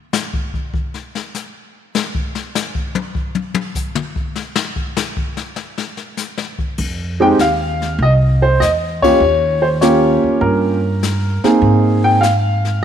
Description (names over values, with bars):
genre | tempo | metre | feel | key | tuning
jazz piano trio | 99 BPM | 4/4 | swing 69% on 8ths | F minor | A4 = 440 Hz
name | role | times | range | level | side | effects
jazz brush drum kit | drums | 0.1-12.8 s | brushed snare drum, crash cymbal, hi-hat, kick drum, ride cymbal, snare drum, toms | -22 LUFS | left 4 dB | none
upright bass | bass | 6.8-12.8 s | C2 to Ab2 | -17 LUFS | right 1 dB | none
warm baby grand piano | melody | 7.2-12.8 s | Ab3 to G5 | -13 LUFS | equal | none
room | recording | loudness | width
light reverb | 1960s-style stereo | -14 LUFS | side -9 dB against mid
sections
0.0-6.8 A section; 6.8-12.8 B section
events
drum solo 0.0-6.8; band accent 8.9-9.2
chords
0.0 N.C.; 6.8 F7(no3); 9.2 Eb9; 11.6 Ab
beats
0.14 0.74 1.35 | 1.95 2.56 3.16 3.76 | 4.37 4.97 5.58 6.18 | 6.79 7.39 8.00 8.60 | 9.21 9.81 10.42 11.03 | 11.63 12.24 12.84